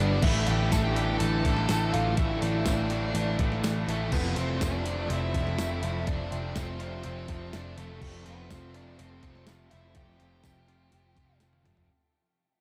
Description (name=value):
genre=rock, shoegaze and dream pop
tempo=123 BPM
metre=4/4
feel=straight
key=unclear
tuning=A4 = 440 Hz
part: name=octave-fuzz lead guitar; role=melody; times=0.0-11.4 s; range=A3 to A4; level=-37 LUFS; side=equal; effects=distortion, tape echo
part: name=direct-recorded clean electric guitar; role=arpeggios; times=0.0-11.9 s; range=E3 to F4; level=-43 LUFS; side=equal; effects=none
part: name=crunchy overdriven guitar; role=riff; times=0.0-11.9 s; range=F2 to A3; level=-39 LUFS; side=equal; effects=none
part: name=overdriven electric guitar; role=riff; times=0.0-11.9 s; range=F2 to G4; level=-40 LUFS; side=equal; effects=none
part: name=thick fuzz guitar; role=riff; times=0.0-11.9 s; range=F2 to A3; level=-38 LUFS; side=equal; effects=distortion, ensemble chorus
part: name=vintage muted picked electric bass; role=bass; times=0.0-11.9 s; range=F1 to A1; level=-34 LUFS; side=equal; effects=none
part: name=crisp 8-bit digital drum machine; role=drums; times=0.2-11.9 s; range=crash cymbal, hi-hat, kick drum, snare drum, toms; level=-34 LUFS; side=equal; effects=none
part: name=tambourine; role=percussion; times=0.7-11.5 s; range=none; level=-46 LUFS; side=equal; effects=none
room=wet huge ambient reverb, RT60 8.0 s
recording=dreamy mix soaked in reverb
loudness=-28 LUFS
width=mono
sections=0.0-11.9 A section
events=fade-out 0.0-11.9; drum fill 11.4-11.9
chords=0.2 Asus4; 4.1 F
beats=| 0.23 0.72 1.20 1.69 | 2.18 2.67 3.15 3.64 | 4.13 4.62 5.10 5.59 | 6.08 6.56 7.05 7.54 | 8.02 8.51 8.99 9.48 | 9.96 10.45 10.93 11.41